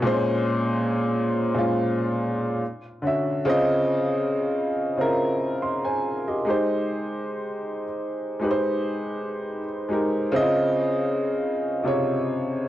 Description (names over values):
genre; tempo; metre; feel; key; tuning
R&B; 70 BPM; 4/4; swing 54% on 16ths; unclear; A4 = 440 Hz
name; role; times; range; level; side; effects
warm upright piano; solo; 0.0-12.7 s; Bb2 to C6; -22 LUFS; equal; none
room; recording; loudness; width
light reverb, studio ambience; home recording on cassette; -22 LUFS; side -13 dB against mid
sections
0.0-12.7 A section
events
none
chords
0.0 Bbm9; 2.6 Dmaj9; 3.5 Dbmaj9; 6.5 Abmaj7; 10.3 Dbmaj9